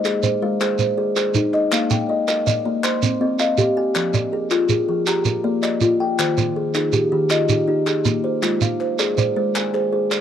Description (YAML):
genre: southern african traditional, mbira-style interlocking cycle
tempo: 107 BPM (dotted quarters)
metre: 12/8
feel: straight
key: Bb mixolydian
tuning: A4 = 438 Hz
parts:
  - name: kalimba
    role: arpeggios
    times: 0.0-10.2 s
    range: Eb3 to C6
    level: -21 LUFS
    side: left 5 dB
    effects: none
  - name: kalimba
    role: arpeggios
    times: 0.0-10.2 s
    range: Eb3 to Ab5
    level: -22 LUFS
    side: right 4 dB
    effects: none
  - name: shekere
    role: percussion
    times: 0.0-10.2 s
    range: none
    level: -22 LUFS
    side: right 5 dB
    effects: none
  - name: group handclap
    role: percussion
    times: 0.1-10.2 s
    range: none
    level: -28 LUFS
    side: left 7 dB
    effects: none
room: small room ambience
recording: dry, close 1970s-style studio recording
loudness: -17 LUFS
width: side -9 dB against mid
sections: 0.0-1.7 A section; 1.7-10.2 B section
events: none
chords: 0.0 Ab; 1.7 Bb; 2.8 Cm; 4.0 Fm; 5.1 Bb; 6.2 Eb; 8.4 Ab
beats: 0.06 0.61 1.17 | 1.73 2.28 2.84 3.40 | 3.96 4.52 5.08 5.63 | 6.19 6.75 7.31 7.87 | 8.43 8.99 9.55 10.11